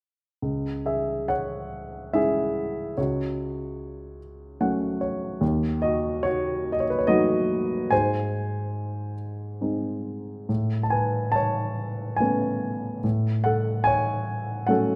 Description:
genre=classical, lyrical solo piano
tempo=71 BPM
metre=3/4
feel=uneven beats, rubato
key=C# minor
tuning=A4 = 440 Hz
part: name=dark grand piano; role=solo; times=0.4-15.0 s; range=C#2 to A5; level=-26 LUFS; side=equal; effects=none
room=moderate scoring stage reverb, RT60 1.6 s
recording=none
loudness=-26 LUFS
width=mono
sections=0.4-15.0 A section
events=grand piano fill 4.2-5.4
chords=0.4 C#m; 3.0 F#m/C#; 5.4 D#dim; 7.9 G#; 10.5 Aadd9; 13.0 F#m/A

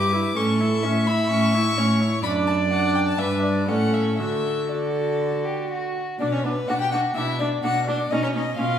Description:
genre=quick classical-period movement for string quartet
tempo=118-130 BPM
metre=4/4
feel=rubato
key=D major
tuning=A4 = 440 Hz
part: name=rich violin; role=melody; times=0.0-8.8 s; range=B4 to D6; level=-27 LUFS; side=left 4 dB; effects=none
part: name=rich violin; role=second line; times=0.0-8.8 s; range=B3 to E5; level=-26 LUFS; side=left 1 dB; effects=none
part: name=warm viola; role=accompaniment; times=0.0-8.7 s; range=C#4 to G4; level=-27 LUFS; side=right 1 dB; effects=none
part: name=dark cello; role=bass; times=0.0-8.8 s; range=F#2 to D3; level=-24 LUFS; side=right 1 dB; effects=none
room=wet stone room reverb, RT60 1.3 s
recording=heard from further back in the room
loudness=-20 LUFS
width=side -9 dB against mid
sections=0.0-6.2 A section; 6.2-8.8 B section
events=none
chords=0.4 A; 2.2 D/F#; 3.2 Em7/G; 3.7 A; 4.2 D; 6.2 Bm; 8.1 C#7/B

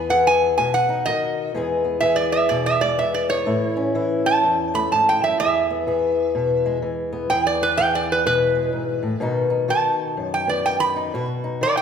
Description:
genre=acoustic country blues, solo or duo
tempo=125 BPM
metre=4/4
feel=swing 62% on 8ths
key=E major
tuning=A4 = 439 Hz
part: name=metal-body resonator slide guitar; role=melody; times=0.0-11.8 s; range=B4 to B5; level=-20 LUFS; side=right 3 dB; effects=none
part: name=fingerpicked old ladder-braced acoustic guitar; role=accompaniment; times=0.0-11.8 s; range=E2 to G#4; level=-22 LUFS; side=left 3 dB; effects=none
room=wet recital hall reverb, RT60 1.6 s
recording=recorded in a church or concert hall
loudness=-18 LUFS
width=side -7 dB against mid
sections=0.0-1.5 A section; 1.5-11.8 A section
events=resonator guitar played with a steel bar solo 0.0-11.8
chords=0.0 E; 0.6 B; 1.5 E; 3.5 A; 5.4 E; 9.2 B

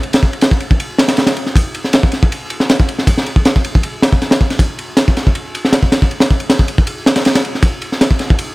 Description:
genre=drum and bass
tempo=158 BPM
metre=4/4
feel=straight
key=none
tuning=none
part: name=crunchy breakbeat drum kit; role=drums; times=0.0-8.5 s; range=kick drum, ride cymbal, snare drum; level=-11 LUFS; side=equal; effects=none
room=little or no reverb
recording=none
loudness=-11 LUFS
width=side -22 dB against mid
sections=0.0-8.5 A section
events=none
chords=none

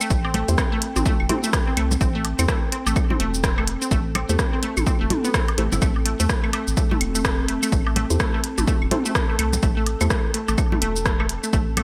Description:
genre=minimal techno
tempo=126 BPM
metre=4/4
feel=swing 60% on 16ths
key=A minor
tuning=A4 = 442 Hz
part: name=resonant blip pluck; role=riff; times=0.0-11.8 s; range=A3 to E4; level=-30 LUFS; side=equal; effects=chorus, sidechain pumping, delay
part: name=minimal click drum kit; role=drums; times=0.0-11.8 s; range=hi-hat, rim click, shaker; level=-29 LUFS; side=equal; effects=gated reverb
part: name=electronic claves, woodblock, congas and toms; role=percussion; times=0.0-11.8 s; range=none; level=-30 LUFS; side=equal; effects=gated reverb, digital delay
part: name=warbly tape-like pad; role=texture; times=0.0-11.8 s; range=C4 to A5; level=-33 LUFS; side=equal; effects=chorus, built-in reverb, sidechain pumping
part: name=round analog bass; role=bass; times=0.1-11.8 s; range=E1 to E2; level=-27 LUFS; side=equal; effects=sidechain pumping
part: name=electronic kick drum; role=drums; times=0.1-11.6 s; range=none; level=-25 LUFS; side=equal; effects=overdrive
part: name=filtered dub chord stab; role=stabs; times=0.5-10.1 s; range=A3 to C5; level=-33 LUFS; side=equal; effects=chorus, digital delay
room=light reverb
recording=bright 1980s-style digital production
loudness=-22 LUFS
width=mono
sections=0.0-11.8 A section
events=none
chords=0.0 Am7

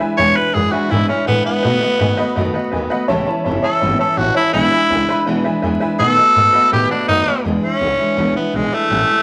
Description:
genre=rock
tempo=165 BPM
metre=4/4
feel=straight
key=unclear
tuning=A4 = 439 Hz
part: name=honky-tonk upright piano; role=accompaniment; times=0.0-7.4 s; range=B4 to B5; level=-25 LUFS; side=equal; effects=none
part: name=picked steel-string acoustic guitar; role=accompaniment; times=0.0-9.2 s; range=E2 to F#4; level=-22 LUFS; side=equal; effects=none
part: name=upright bass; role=bass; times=0.0-9.1 s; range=F#1 to B2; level=-24 LUFS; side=equal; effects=none
part: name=growling tenor saxophone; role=melody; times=0.2-9.2 s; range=G#3 to C#5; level=-17 LUFS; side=equal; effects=none
room=moderate studio reverb, RT60 0.8 s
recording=vinyl crackle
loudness=-16 LUFS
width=mono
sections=0.0-7.4 A section; 7.4-9.2 B section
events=tenor saxophone solo 0.0-7.4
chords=0.0 E7; 1.6 B7; 3.1 A7; 4.5 E7; 6.0 B7; 7.4 E7

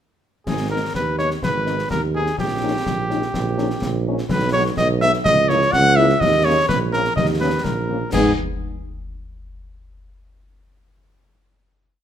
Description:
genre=military-style march for wind band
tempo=125 BPM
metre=2/4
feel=straight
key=G# minor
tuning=A4 = 440 Hz
part: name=clear cornet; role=melody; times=0.5-8.3 s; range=G4 to F#5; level=-20 LUFS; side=equal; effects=none
part: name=mellow tuba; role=bass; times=0.5-8.3 s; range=G#1 to G#2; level=-22 LUFS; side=right 3 dB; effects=none
part: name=concert snare drum, clash cymbals and concert bass drum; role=drums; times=0.5-8.4 s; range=none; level=-26 LUFS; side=left 2 dB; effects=none
part: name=dark French horn section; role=accompaniment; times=0.7-8.3 s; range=G3 to E4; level=-27 LUFS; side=left 5 dB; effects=none
room=moderate large studio reverb, RT60 1.2 s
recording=none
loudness=-17 LUFS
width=side -9 dB against mid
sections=0.5-8.1 A section; 8.1-9.1 final chord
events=none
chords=0.5 G#m; 2.4 D#7/A#; 4.3 G#m/B; 5.3 A#m7b5/C#; 6.2 D#7sus4; 7.2 D#7; 8.1 G#m

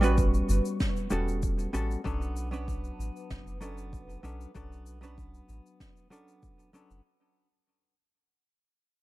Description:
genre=sunset chillout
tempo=96 BPM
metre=4/4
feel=straight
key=unclear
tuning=A4 = 443 Hz
part: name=hollow-body jazz guitar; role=accompaniment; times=0.0-7.0 s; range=F#3 to B4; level=-33 LUFS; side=right 1 dB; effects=auto-pan, digital delay
part: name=lush unison pad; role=sustained chords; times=0.0-7.0 s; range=B4 to D6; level=-41 LUFS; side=right 4 dB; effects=chorus, phaser
part: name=round analog bass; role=bass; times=0.0-7.0 s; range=E1 to B1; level=-31 LUFS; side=equal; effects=none
part: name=shaker and snare drum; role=drums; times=0.0-7.0 s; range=none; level=-39 LUFS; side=equal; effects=none
part: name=electronic kick drum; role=drums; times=0.2-6.6 s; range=none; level=-31 LUFS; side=equal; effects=none
room=little or no reverb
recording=dark, warm production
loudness=-28 LUFS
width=side -17 dB against mid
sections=0.0-7.1 A section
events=fade-out 0.0-7.1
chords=0.0 A13; 2.1 Bm9

